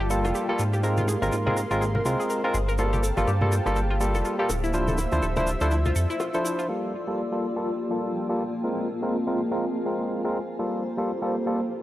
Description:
deep house; 123 BPM; 4/4; swing 58% on 16ths; G dorian; A4 = 440 Hz
warm analog pad; sustained chords; 0.0-11.8 s; Bb3 to E6; -33 LUFS; right 1 dB; chorus
analog pluck; arpeggios; 0.0-6.6 s; E4 to Bb4; -32 LUFS; left 2 dB; chorus, vintage 12-bit sampler grit, tape echo
smooth synth bass; bass; 0.0-6.1 s; D1 to Ab2; -25 LUFS; equal
granular cloud pad; texture; 0.0-11.8 s; Bb3 to E6; -32 LUFS; left 1 dB; built-in reverb
barky tine electric piano; stabs; 0.1-11.6 s; F3 to C5; -27 LUFS; equal; low-pass filter, analog delay
egg shaker; percussion; 0.1-6.7 s; -39 LUFS; right 3 dB
bongos and congas; percussion; 0.2-6.3 s; -33 LUFS; left 1 dB
moderate lush hall reverb, RT60 3.0 s; cassette tape; -23 LUFS; side -14 dB against mid
0.0-6.7 A section; 6.7-11.8 B section
break 6.2-6.7
0.0 Gm9; 0.8 Ab69; 2.8 Gm9; 4.5 Dm9; 6.7 Gm9; 8.6 Ab69; 10.6 Gm9

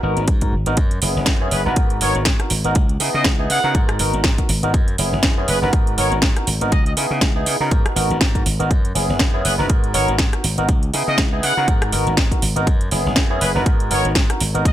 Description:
filtered disco house; 121 BPM; 4/4; swing 57% on 16ths; G# minor; A4 = 440 Hz
barky tine electric piano; accompaniment; 0.0-14.6 s; B3 to A#4; -22 LUFS; equal; phaser, sidechain pumping, low-pass filter
slap bass; bass; 0.0-14.7 s; F#1 to C#3; -22 LUFS; equal; sidechain pumping, low-pass filter
house drum kit; drums; 0.2-14.7 s; hi-hat, rim click, snare drum; -22 LUFS; right 1 dB; sidechain pumping on hats
electronic kick drum; drums; 0.3-14.7 s; -18 LUFS; equal
clear trumpet section; melody; 1.5-14.7 s; B4 to F#5; -24 LUFS; equal; sidechain pumping, low-pass filter, ping-pong delay
light reverb; -15 LUFS; side -12 dB against mid
0.0-14.7 A section
0.0 G#m7; 0.8 F#7sus4; 1.8 G#m7; 2.8 C#m9; 3.7 G#m7; 4.7 F#7sus4; 5.7 G#m7; 6.7 C#m9; 7.7 G#m7; 8.7 F#7sus4; 9.7 G#m7; 10.7 C#m9; 11.7 G#m7; 12.7 F#7sus4; 13.7 G#m7

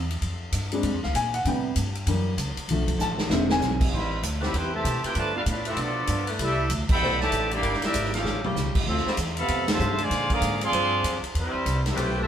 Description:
jazz, big band swing; 194 BPM; 4/4; swing 62% on 8ths; A minor; A4 = 439 Hz
upright bass; bass; 0.0-12.3 s; E1 to B2; -28 LUFS; equal
swinging big-band drum kit; drums; 0.1-12.1 s; crash cymbal, hi-hat, kick drum, ride cymbal, snare drum, toms; -29 LUFS; equal
warm baby grand piano; accompaniment; 0.7-3.9 s; C3 to A5; -26 LUFS; left 2 dB
warm trumpet section; melody; 3.9-12.3 s; G3 to C6; -27 LUFS; right 1 dB
mellow trombone section; second line; 3.9-12.3 s; A2 to Ab4; -32 LUFS; equal
clear saxophone section; sustained chords; 4.4-12.3 s; G3 to C5; -33 LUFS; left 1 dB
moderate stone room reverb, RT60 1.1 s; band playing live in one room, faint mains hum; -23 LUFS; side -9 dB against mid
0.0-3.9 A section; 3.9-12.3 B section
grand piano solo 0.0-3.9; drum fill 3.0-3.6, 8.3-8.6; band accent 6.9, 9.6
0.2 Bb13; 1.5 Am9; 2.1 F#7b9; 2.7 Bm7b5; 3.3 E7b13; 3.9 Am9; 5.2 G9; 6.4 C69; 7.6 Em7b5; 8.3 A7b13; 8.9 Dm11; 10.1 Bb13; 11.4 Am9

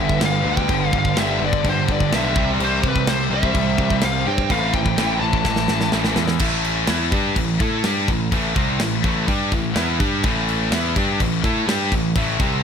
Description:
heavy metal; 126 BPM; 4/4; straight; A minor; A4 = 444 Hz
high-gain lead guitar; melody; 0.0-5.9 s; B4 to A5; -24 LUFS; left 1 dB; distortion, ping-pong delay
rich symphonic string section; sustained chords; 0.0-6.4 s; D3 to C5; -32 LUFS; left 2 dB
heavy high-gain guitar; riff; 0.0-12.6 s; G2 to A4; -24 LUFS; left 18 dB; distortion
heavy high-gain guitar; riff; 0.0-12.6 s; G2 to A4; -24 LUFS; right 14 dB; distortion
growling picked electric bass; bass; 0.0-12.6 s; G1 to A2; -24 LUFS; equal; overdrive
tight metal drum kit; drums; 0.1-12.5 s; crash cymbal, kick drum, snare drum; -23 LUFS; equal
little or no reverb; -17 LUFS; side -7 dB against mid
0.0-6.4 A section; 6.4-12.6 B section
drum fill 5.5-6.4
0.0 G; 2.4 C; 4.5 Am

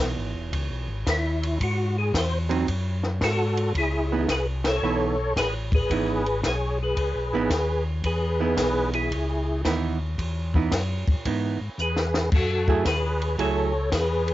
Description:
soul jazz organ trio; 112 BPM; 4/4; swing 67% on 8ths; C# minor; A4 = 439 Hz
archtop guitar, miked and amplified; accompaniment; 0.0-13.7 s; E3 to G#4; -27 LUFS; right 6 dB; cassette tape
mellow tonewheel organ; bass; 0.0-14.3 s; E1 to G#2; -27 LUFS; left 1 dB; slow rotary speaker
compact cocktail drum kit; drums; 0.5-14.3 s; crash cymbal, hi-hat, kick drum, ride cymbal, snare drum; -28 LUFS; left 1 dB; cassette tape
percussive tonewheel organ; melody; 1.1-14.3 s; E4 to C#5; -26 LUFS; left 1 dB; slow rotary speaker, chorus vibrato
light reverb; home recording on cassette, nothing above 7.6 kHz; -22 LUFS; side -15 dB against mid
0.0-3.8 A section; 3.8-14.3 B section
tonewheel organ solo 0.0-3.8; band accent 4.6; drum fill 11.8-12.3
0.0 C#m9; 1.6 G#7(no3); 3.8 C#m9; 12.3 F#m9

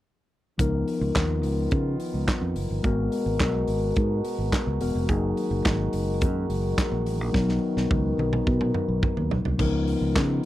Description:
disco; 107 BPM; 4/4; straight; A4 = 440 Hz
mellow tine electric piano; accompaniment; 0.6-10.5 s; E3 to A#4; -28 LUFS; left 3 dB
mellow French horn section; sustained chords; 0.6-10.5 s; B2 to A#4; -31 LUFS; left 1 dB; stereo widening
fingered electric bass; bass; 0.6-10.4 s; E1 to C#3; -27 LUFS; right 1 dB
modern studio drum kit; drums; 0.6-10.3 s; crash cymbal, handclaps, hi-hat, kick drum, snare drum, toms; -27 LUFS; right 1 dB
light reverb; dry, close 1970s-style studio recording; -22 LUFS; side -15 dB against mid
0.6-9.6 A section
drum fill 7.3-9.6
0.6 C#13; 2.8 G#m9; 5.1 F#69; 7.3 Bmaj7; 9.6 C#13

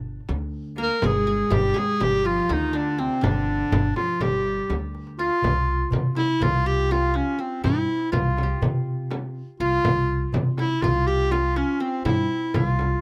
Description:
Turkish makam ensemble; 245 BPM (eighths); 9/8; straight; G makam kurdi, C makam hicaz from 5.4 s; A4 = 440 Hz
qanun; second line; 0.0-13.0 s; C4 to Bb4; -34 LUFS; equal
upright bass; bass; 0.0-12.9 s; G1 to C3; -28 LUFS; equal
darbuka; percussion; 0.1-12.9 s; -32 LUFS; equal
frame drum; percussion; 0.3-12.9 s; -32 LUFS; equal
bright clarinet; melody; 0.8-13.0 s; C4 to Bb4; -26 LUFS; equal; tape echo
clear cello; second line; 0.8-4.8 s; C3 to Bb3; -32 LUFS; equal
light reverb; close, detailed microphones; -23 LUFS; mono
0.0-5.4 A section; 5.4-13.0 B section
drum fill 4.9-5.4

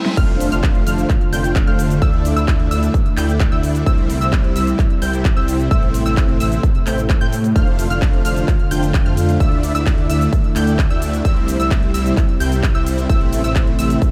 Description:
EDM, festival progressive house; 130 BPM; 4/4; straight; F major; A4 = 440 Hz
supersaw chords; riff; 0.0-14.0 s; G3 to G5; -26 LUFS; equal; ensemble chorus, cassette tape, sidechain pumping, delay
reverse cymbal and impact; sound effects; 0.0-2.0, 14.0-14.1 s; -34 LUFS; equal
big-room dance drum kit; drums; 0.1-14.1 s; crash cymbal, handclaps, hi-hat, ride cymbal, shaker, snare drum; -31 LUFS; equal; overdrive
lush unison pad; sustained chords; 0.2-14.1 s; C3 to F4; -25 LUFS; equal; chorus, vintage 12-bit sampler grit, sidechain pumping
unison pluck; arpeggios; 0.2-14.0 s; E6 to G6; -29 LUFS; equal; sidechain pumping, delay
detuned saw bass; bass; 0.2-14.0 s; F1 to A2; -23 LUFS; equal; chorus, sidechain pumping
electronic kick drum; drums; 0.2-14.1 s; -18 LUFS; equal
light reverb; -17 LUFS; mono
0.2-14.1 A section
break 0.0; drum fill 0.0; reverse cymbal 0.0; drop 0.2-14.1; impact 0.2-2.0
0.2 F6; 2.0 Dsus2; 3.9 C; 5.7 Am; 7.6 F6; 9.4 Dsus2; 11.2 C; 13.1 Am

